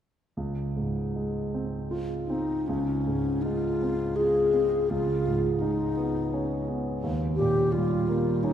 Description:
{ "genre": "classical, impressionist duo for alto flute and grand piano", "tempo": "73-86 BPM", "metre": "3/4", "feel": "rubato", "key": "Db major", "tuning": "A4 = 440 Hz", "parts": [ { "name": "warm concert grand piano", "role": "accompaniment", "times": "0.4-8.5 s", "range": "Db2 to F4", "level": "-28 LUFS", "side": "right 1 dB", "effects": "none" }, { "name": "mellow hollow alto flute", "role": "melody", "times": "2.3-8.5 s", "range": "Db4 to Ab4", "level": "-26 LUFS", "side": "left 2 dB", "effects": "none" } ], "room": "wet cathedral reverb, RT60 5.3 s", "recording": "recorded in a church or concert hall", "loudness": "-25 LUFS", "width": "side -9 dB against mid", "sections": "0.4-2.7 A section; 2.7-8.5 B section", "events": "none", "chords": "0.4 Dbmaj7; 4.9 Cb69/Db; 7.0 Ebadd9" }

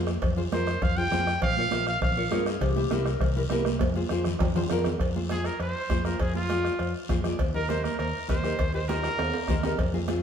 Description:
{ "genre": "latin, cumbia", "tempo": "201 BPM", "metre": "4/4", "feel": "straight", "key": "F harmonic minor, F dorian from 5.0 s", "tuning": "A4 = 441 Hz", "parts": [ { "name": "nylon-string guitar", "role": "accompaniment", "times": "0.0-10.2 s", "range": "C4 to E5", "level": "-31 LUFS", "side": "left 2 dB", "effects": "none" }, { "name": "fingered electric bass", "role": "bass", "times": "0.0-10.2 s", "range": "Bb1 to G2", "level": "-30 LUFS", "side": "equal", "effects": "none" }, { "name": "bombo", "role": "percussion", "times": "0.1-10.2 s", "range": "none", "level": "-31 LUFS", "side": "equal", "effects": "none" }, { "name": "guiro", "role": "percussion", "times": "0.1-10.2 s", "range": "none", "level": "-43 LUFS", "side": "left 5 dB", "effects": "none" }, { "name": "congas", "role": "percussion", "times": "0.2-10.2 s", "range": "none", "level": "-34 LUFS", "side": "right 4 dB", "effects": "none" }, { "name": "cowbell and timbales", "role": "percussion", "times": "0.2-10.2 s", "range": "none", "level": "-37 LUFS", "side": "right 3 dB", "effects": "none" }, { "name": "bright trumpet", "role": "melody", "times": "0.5-2.4, 5.3-9.8 s", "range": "F4 to G5", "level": "-30 LUFS", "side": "right 1 dB", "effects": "none" }, { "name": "growling clarinet", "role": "second line", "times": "2.3-3.5 s", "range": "G4 to Bb4", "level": "-33 LUFS", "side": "left 6 dB", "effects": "none" } ], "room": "wet stone room reverb, RT60 1.5 s", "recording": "band playing live in one room", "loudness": "-24 LUFS", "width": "side -8 dB against mid", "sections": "0.0-5.0 A section; 5.0-10.2 B section", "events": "drum fill 3.8-5.0, 8.9-9.8; trumpet solo 5.0-10.2", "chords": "0.0 Fm; 1.4 Bbm; 2.6 C7; 3.8 Fm; 7.4 Eb" }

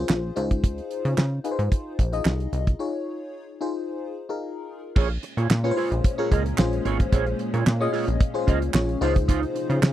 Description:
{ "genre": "early-eighties boogie funk", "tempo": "111 BPM", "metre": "4/4", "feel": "straight", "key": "Bb minor", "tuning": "A4 = 439 Hz", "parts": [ { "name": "FM electric piano with soft pad layer", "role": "accompaniment", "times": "0.0-9.8 s", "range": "Db4 to Eb5", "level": "-28 LUFS", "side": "left 4 dB", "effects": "chorus, phaser" }, { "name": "plucky analog bass", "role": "bass", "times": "0.0-9.9 s", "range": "Ab1 to Db3", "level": "-25 LUFS", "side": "equal", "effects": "none" }, { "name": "damped 70s drum kit", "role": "drums", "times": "0.1-9.9 s", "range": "crash cymbal, hi-hat, kick drum, snare drum", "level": "-21 LUFS", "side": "equal", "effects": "none" }, { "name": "group handclap", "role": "percussion", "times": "0.1-9.9 s", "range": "none", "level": "-30 LUFS", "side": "right 8 dB", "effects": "none" }, { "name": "soft string machine", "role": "sustained chords", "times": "5.3-9.9 s", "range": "Bb2 to Eb4", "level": "-33 LUFS", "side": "equal", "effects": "ensemble chorus" }, { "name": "mellow electric guitar", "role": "riff", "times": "5.0-9.9 s", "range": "Eb4 to Eb5", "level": "-28 LUFS", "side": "right 8 dB", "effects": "analog chorus" } ], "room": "little or no reverb", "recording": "dry, close 1970s-style studio recording", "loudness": "-22 LUFS", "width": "side -12 dB against mid", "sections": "0.0-5.0 A section; 5.0-9.9 B section", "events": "break 2.8-5.0", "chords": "0.4 Dbmaj9; 5.0 Bbm7; 9.0 Dbmaj9" }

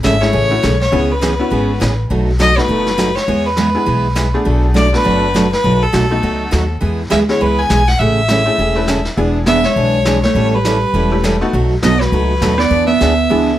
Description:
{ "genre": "country, western swing", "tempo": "204 BPM", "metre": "4/4", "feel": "swing 61% on 8ths", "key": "A major", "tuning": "A4 = 440 Hz", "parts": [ { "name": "rich fiddle", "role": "melody", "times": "0.0-13.6 s", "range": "A4 to G#5", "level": "-17 LUFS", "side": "left 1 dB", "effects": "none" }, { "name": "picked steel-string acoustic guitar", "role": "accompaniment", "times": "0.0-13.5 s", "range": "B2 to A4", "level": "-18 LUFS", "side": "right 2 dB", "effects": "none" }, { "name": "upright bass", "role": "bass", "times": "0.0-13.6 s", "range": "E1 to E2", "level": "-17 LUFS", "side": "equal", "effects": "none" }, { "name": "vintage brush drum kit", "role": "drums", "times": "0.0-13.6 s", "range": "brushed snare drum, hi-hat, snare drum", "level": "-24 LUFS", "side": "equal", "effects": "none" }, { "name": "tack piano", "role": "accompaniment", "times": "0.2-13.6 s", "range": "G#3 to B4", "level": "-20 LUFS", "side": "left 2 dB", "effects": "none" }, { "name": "vintage hollow-body jazz guitar", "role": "second line", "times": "9.5-13.6 s", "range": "F#3 to B3", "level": "-17 LUFS", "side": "right 4 dB", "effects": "none" } ], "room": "light reverb", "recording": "none", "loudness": "-12 LUFS", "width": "side -13 dB against mid", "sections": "0.0-13.6 A section", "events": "none", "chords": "0.0 Amaj7; 2.1 B7; 3.3 E; 4.5 Bm7; 5.6 B7; 6.8 E; 8.0 Amaj7; 9.2 E7; 10.4 A7; 11.5 B7; 12.7 E7" }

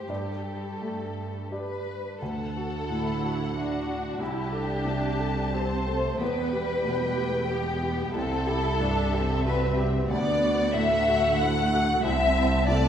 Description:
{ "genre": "cinematic, emotional film score for orchestra", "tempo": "83-95 BPM", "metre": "3/4", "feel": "rubato", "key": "unclear", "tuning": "A4 = 441 Hz", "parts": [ { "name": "warm studio violin section", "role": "second line", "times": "0.0-12.9 s", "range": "F#4 to F#5", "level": "-28 LUFS", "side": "left 1 dB", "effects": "none" }, { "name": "felt-muted upright piano", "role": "accompaniment", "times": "0.0-12.9 s", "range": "C2 to A5", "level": "-32 LUFS", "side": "left 1 dB", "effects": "none" }, { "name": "warm studio cello section", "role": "bass", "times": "0.0-12.9 s", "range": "C2 to G2", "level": "-33 LUFS", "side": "right 2 dB", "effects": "none" }, { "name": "warm studio violin section", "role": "melody", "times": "2.2-12.9 s", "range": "E5 to A5", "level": "-37 LUFS", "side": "left 3 dB", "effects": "none" }, { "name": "warm studio double bass section", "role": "bass", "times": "2.2-12.9 s", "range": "E1 to D2", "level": "-32 LUFS", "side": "right 2 dB", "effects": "none" }, { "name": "warm studio viola section", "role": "accompaniment", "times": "2.9-12.9 s", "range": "G3 to E4", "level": "-32 LUFS", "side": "right 2 dB", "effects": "none" } ], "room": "wet scoring stage reverb, RT60 1.6 s", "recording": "heard from further back in the room", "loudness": "-24 LUFS", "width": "side -9 dB against mid", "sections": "0.0-2.2 A section; 2.2-12.9 B section", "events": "none", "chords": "0.1 Gsus2; 2.2 Dadd9; 4.2 Am/C; 6.2 Em; 8.1 C; 10.1 Dadd9; 12.0 Am/C" }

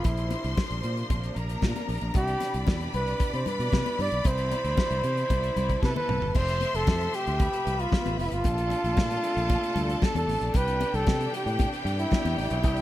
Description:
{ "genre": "disco", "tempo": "114 BPM", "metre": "4/4", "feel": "straight", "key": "C major", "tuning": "A4 = 438 Hz", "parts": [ { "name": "breathy flugelhorn", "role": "melody", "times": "0.0-12.8 s", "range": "E4 to D5", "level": "-29 LUFS", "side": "right 1 dB", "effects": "tape echo" }, { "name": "clear studio string section", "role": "second line", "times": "0.0-12.8 s", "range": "G4 to C6", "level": "-34 LUFS", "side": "left 1 dB", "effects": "none" }, { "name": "rich studio string section", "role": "sustained chords", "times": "0.0-12.8 s", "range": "B2 to E5", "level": "-37 LUFS", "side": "left 1 dB", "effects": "none" }, { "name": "fingered electric bass", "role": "bass", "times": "0.0-12.8 s", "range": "F1 to C3", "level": "-30 LUFS", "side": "equal", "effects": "none" }, { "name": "warm soul drum kit", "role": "drums", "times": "0.0-12.8 s", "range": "crash cymbal, hi-hat, kick drum, snare drum, toms", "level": "-28 LUFS", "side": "equal", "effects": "gated reverb" }, { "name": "congas", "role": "percussion", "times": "0.0-12.8 s", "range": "none", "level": "-36 LUFS", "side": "left 6 dB", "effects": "none" } ], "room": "little or no reverb", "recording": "none", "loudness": "-24 LUFS", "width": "side -14 dB against mid", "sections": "0.0-6.4 A section; 6.4-12.8 B section", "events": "drum fill 5.8-6.4", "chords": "0.1 Bbadd9; 2.2 Cmaj9; 6.4 Fmaj7; 8.4 Bbmaj9; 10.5 Cmaj9" }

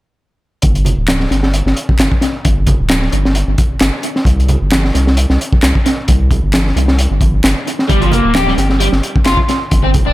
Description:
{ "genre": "breakbeat, breaks", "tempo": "132 BPM", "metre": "4/4", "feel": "swing 54% on 16ths", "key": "G minor pentatonic", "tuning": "A4 = 440 Hz", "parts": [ { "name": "saturated sub bass", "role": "bass", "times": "0.6-10.1 s", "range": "D1 to C2", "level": "-14 LUFS", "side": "equal", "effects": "tube saturation" }, { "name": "crunchy breakbeat drum kit", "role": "drums", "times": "0.6-10.1 s", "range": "hi-hat, kick drum, snare drum", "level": "-14 LUFS", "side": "equal", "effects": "tape echo" }, { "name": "congas", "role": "percussion", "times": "0.8-10.0 s", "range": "none", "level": "-23 LUFS", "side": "right 3 dB", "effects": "tape echo" }, { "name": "electronic handclaps", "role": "drums", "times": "1.1-9.4 s", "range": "none", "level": "-23 LUFS", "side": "equal", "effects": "overdrive, tape echo" }, { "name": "crunchy overdriven guitar", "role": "riff", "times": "7.9-10.1 s", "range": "F3 to G4", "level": "-15 LUFS", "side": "equal", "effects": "tape echo" } ], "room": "light reverb, small room ambience", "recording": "echo-heavy mix", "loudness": "-11 LUFS", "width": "side -16 dB against mid", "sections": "0.6-10.1 A section", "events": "none", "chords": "0.6 G5; 4.3 C5; 7.9 G5" }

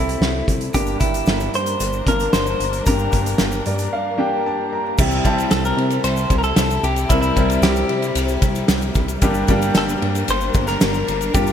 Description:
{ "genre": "piano-driven pop", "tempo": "113 BPM", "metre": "4/4", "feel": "straight", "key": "C mixolydian", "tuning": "A4 = 440 Hz", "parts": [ { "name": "direct-recorded clean electric guitar", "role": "melody", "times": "0.0-11.5 s", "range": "E4 to C5", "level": "-24 LUFS", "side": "left 1 dB", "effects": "wide subtle chorus, digital delay" }, { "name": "clear grand piano", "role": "accompaniment", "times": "0.0-11.5 s", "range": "G2 to Bb5", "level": "-22 LUFS", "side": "equal", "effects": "wide subtle chorus" }, { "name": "warm studio string section", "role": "sustained chords", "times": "0.0-11.5 s", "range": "C3 to Bb4", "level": "-29 LUFS", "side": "left 3 dB", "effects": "none" }, { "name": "chorused synth bass", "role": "bass", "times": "0.0-11.5 s", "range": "G1 to C3", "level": "-24 LUFS", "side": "equal", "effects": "none" }, { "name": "loose indie drum kit", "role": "drums", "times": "0.1-11.5 s", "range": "crash cymbal, hi-hat, kick drum, ride cymbal, snare drum", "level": "-20 LUFS", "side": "equal", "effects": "gated reverb" }, { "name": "tube shaker", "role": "percussion", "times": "0.7-11.5 s", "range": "none", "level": "-35 LUFS", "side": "left 8 dB", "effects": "none" } ], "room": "light reverb, studio reverb", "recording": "bright 1980s-style digital production", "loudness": "-16 LUFS", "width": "side -9 dB against mid", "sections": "0.0-5.0 A section; 5.0-11.5 B section", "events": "grand piano fill 3.4-5.0; break 3.9-5.0", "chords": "0.0 C; 0.7 Gm; 5.0 C; 9.2 Gm" }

